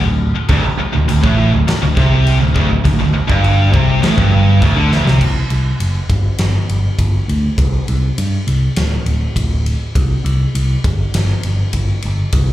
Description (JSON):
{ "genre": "hard rock", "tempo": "101 BPM", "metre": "4/4", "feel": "straight", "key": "unclear", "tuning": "A4 = 440 Hz", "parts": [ { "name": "crunchy overdriven guitar", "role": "riff", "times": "0.0-5.2 s", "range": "D2 to D3", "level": "-18 LUFS", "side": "equal", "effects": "none" }, { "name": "scooped high-gain guitar", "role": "riff", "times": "0.0-5.2 s", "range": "D2 to D3", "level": "-20 LUFS", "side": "left 7 dB", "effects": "distortion" }, { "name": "picked electric bass", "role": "bass", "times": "0.0-12.5 s", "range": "D1 to G2", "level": "-15 LUFS", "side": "equal", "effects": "none" }, { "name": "high-gain distorted guitar", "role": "riff", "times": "0.5-5.2 s", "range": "D2 to D3", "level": "-18 LUFS", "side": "right 8 dB", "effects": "distortion, slapback echo" }, { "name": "huge arena drum kit", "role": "drums", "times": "0.5-12.5 s", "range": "crash cymbal, kick drum, ride cymbal, snare drum", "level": "-18 LUFS", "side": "equal", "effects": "none" } ], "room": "light reverb", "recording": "live gig heard through the venue's PA, club reverb", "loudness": "-12 LUFS", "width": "side -14 dB against mid", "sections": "0.0-5.2 A section; 5.2-12.5 B section", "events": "drum fill 4.9", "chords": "0.0 D5; 5.2 N.C.; 6.1 G5; 7.6 C5; 8.8 N.C.", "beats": "| 0.49 1.08 1.67 2.26 | 2.85 3.44 4.03 4.62 | 5.22 5.81 6.40 6.99 | 7.59 8.18 8.77 9.37 | 9.96 10.55 11.14 11.74 | 12.33" }